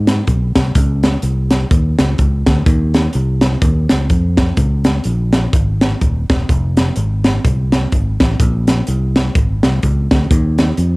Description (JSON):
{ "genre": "uptempo gospel", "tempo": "126 BPM", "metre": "4/4", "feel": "swing 58% on 8ths", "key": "unclear", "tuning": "A4 = 439 Hz", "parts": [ { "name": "fingered electric bass", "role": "bass", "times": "0.0-11.0 s", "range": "Eb1 to Ab2", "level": "-15 LUFS", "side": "equal", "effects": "none" }, { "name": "crisp fusion drum kit", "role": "drums", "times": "0.1-10.9 s", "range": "hi-hat, kick drum, snare drum", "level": "-14 LUFS", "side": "equal", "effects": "cassette tape" } ], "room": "light reverb", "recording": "home recording on cassette", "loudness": "-12 LUFS", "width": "side -26 dB against mid", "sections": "0.0-11.0 A section", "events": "none", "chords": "none", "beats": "0.27 | 0.75 1.23 1.71 2.19 | 2.66 3.14 3.62 4.10 | 4.58 5.05 5.53 6.01 | 6.49 6.97 7.45 7.92 | 8.40 8.88 9.35 9.83 | 10.31 10.79" }